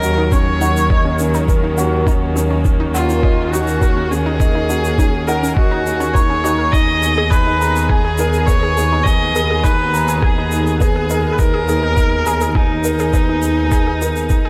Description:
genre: piano and strings electronica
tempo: 103 BPM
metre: 4/4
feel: straight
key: Eb minor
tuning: A4 = 444 Hz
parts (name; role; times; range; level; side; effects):
- clear viola; melody; 0.0-14.5 s; Eb4 to Eb5; -22 LUFS; equal; none
- warm chamber string section; sustained chords; 0.0-14.5 s; Eb3 to Ab4; -27 LUFS; equal; none
- felt-muted upright piano; riff; 0.0-14.5 s; Db4 to Bb5; -25 LUFS; equal; none
- dark chamber double bass section; bass; 0.0-14.5 s; Eb2; -22 LUFS; equal; sidechain pumping
- shaker; drums; 0.0-14.4 s; none; -33 LUFS; equal; none
- unison pluck; arpeggios; 0.2-14.5 s; Db4 to Bb4; -29 LUFS; equal; sidechain pumping, digital delay
- electronic kick drum; drums; 0.3-14.4 s; none; -18 LUFS; equal; none
room: light reverb, studio ambience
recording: none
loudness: -16 LUFS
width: mono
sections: 0.0-14.5 A section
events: none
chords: 0.0 Ebm7; 6.7 Abmadd9/Eb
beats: 0.32 0.91 1.49 | 2.07 2.65 3.23 3.82 | 4.40 4.98 5.57 6.15 | 6.73 7.31 7.90 8.48 | 9.06 9.64 10.23 10.81 | 11.39 11.97 12.56 13.14 | 13.72 14.30

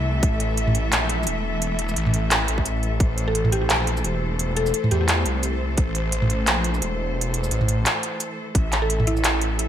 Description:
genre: half-time drum and bass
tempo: 173 BPM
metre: 4/4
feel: swing 57% on 16ths, half-time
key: A phrygian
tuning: A4 = 438 Hz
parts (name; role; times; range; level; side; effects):
- bright symphonic cello section; sustained chords; 0.0-9.7 s; E3 to E5; -28 LUFS; left 1 dB; sidechain pumping
- phased detuned saw bass; bass; 0.0-9.7 s; E1 to E2; -24 LUFS; equal; phaser
- electronic kick drum; drums; 0.2-0.3, 2.6-3.1, 5.8-5.9, 8.5-8.6 s; none; -20 LUFS; equal; overdrive
- organic electronic drum kit; drums; 0.2-9.7 s; handclaps, hi-hat, shaker, toms; -23 LUFS; right 1 dB; gated reverb
- mallet-like synth pluck; melody; 3.3-5.1, 8.8-9.3 s; E4 to A4; -28 LUFS; equal; chorus, digital delay
room: light reverb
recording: bright 1980s-style digital production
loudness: -20 LUFS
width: side -10 dB against mid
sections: 0.0-8.6 A section; 8.6-9.7 A section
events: drop 0.0-8.6, 8.6-9.7; break 7.9-8.6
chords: 0.0 A5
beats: | 0.23 0.58 0.92 1.27 | 1.62 1.96 2.31 2.66 | 3.00 3.35 3.70 4.04 | 4.39 4.74 5.08 5.43 | 5.78 6.13 6.47 6.82 | 7.17 7.51 7.86 8.21 | 8.55 8.90 9.25 9.59

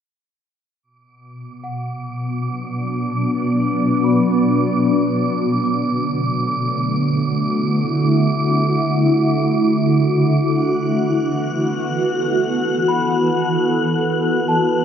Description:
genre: ambient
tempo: free time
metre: none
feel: none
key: B minor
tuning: A4 = 436 Hz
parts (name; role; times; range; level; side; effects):
- shimmering ambient pad; sustained chords; 1.7-14.8 s; B2 to A4; -17 LUFS; equal; chorus, built-in reverb, phaser
- wind-like tuned noise texture; texture; 1.7-14.8 s; D6 to F#6; -26 LUFS; right 2 dB; built-in reverb
- celesta; arpeggios; 1.6-14.8 s; F#5 to D6; -28 LUFS; left 2 dB; tape echo
room: wet cathedral reverb, RT60 5.1 s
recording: in a vast, echoing space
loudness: -16 LUFS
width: side -8 dB against mid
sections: 0.8-14.8 A section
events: fade-in on celesta 0.8-14.8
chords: 0.8 Bm; 5.6 D69; 10.5 Esus4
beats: free time

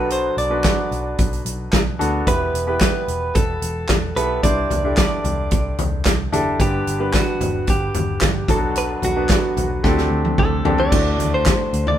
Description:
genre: piano-driven pop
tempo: 111 BPM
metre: 4/4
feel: straight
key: unclear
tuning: A4 = 440 Hz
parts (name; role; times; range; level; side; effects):
- direct-recorded clean electric guitar; melody; 0.0-12.0 s; F#4 to D5; -23 LUFS; right 1 dB; spring reverb
- clear baby grand piano; accompaniment; 0.0-12.0 s; G2 to C5; -23 LUFS; left 1 dB; none
- vintage muted picked electric bass; bass; 0.0-12.0 s; E1 to D2; -25 LUFS; equal; none
- natural country drum kit; drums; 0.1-12.0 s; crash cymbal, handclaps, hi-hat, kick drum, snare drum, toms; -20 LUFS; equal; none
room: light reverb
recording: band playing live in one room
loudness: -17 LUFS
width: side -11 dB against mid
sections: 0.0-10.9 A section; 10.9-12.0 B section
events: drum fill 9.8-10.9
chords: 0.0 Bm7; 2.3 Em; 4.4 Cadd9; 6.6 G; 8.5 Bm7; 9.8 D7sus4; 10.9 D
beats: | 0.10 0.64 1.19 1.73 | 2.27 2.81 3.35 3.89 | 4.43 4.97 5.51 6.05 | 6.59 7.13 7.68 8.22 | 8.76 9.30 9.84 10.38 | 10.92 11.46

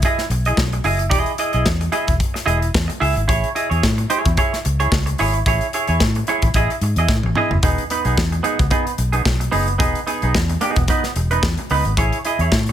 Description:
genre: disco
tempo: 111 BPM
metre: 4/4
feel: swing 56% on 16ths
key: E major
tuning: A4 = 439 Hz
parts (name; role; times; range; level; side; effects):
- semi-hollow electric guitar; accompaniment; 0.0-12.7 s; B3 to E5; -20 LUFS; right 3 dB; wide subtle chorus
- modern studio drum kit; drums; 0.0-12.7 s; hi-hat, kick drum, snare drum, toms; -21 LUFS; left 1 dB; none
- vintage muted fingered electric bass; bass; 0.3-12.7 s; E1 to A2; -20 LUFS; equal; none
room: small room ambience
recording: none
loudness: -16 LUFS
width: side -10 dB against mid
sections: 0.0-12.7 A section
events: drum fill 7.1-7.6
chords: 0.0 Emaj7; 3.3 Amaj7; 7.6 Emaj7; 12.0 Amaj7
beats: 0.03 0.57 | 1.12 1.66 2.20 2.75 | 3.29 3.83 4.37 4.92 | 5.46 6.00 6.54 7.09 | 7.63 8.17 8.71 9.26 | 9.80 10.34 10.89 11.43 | 11.97 12.51

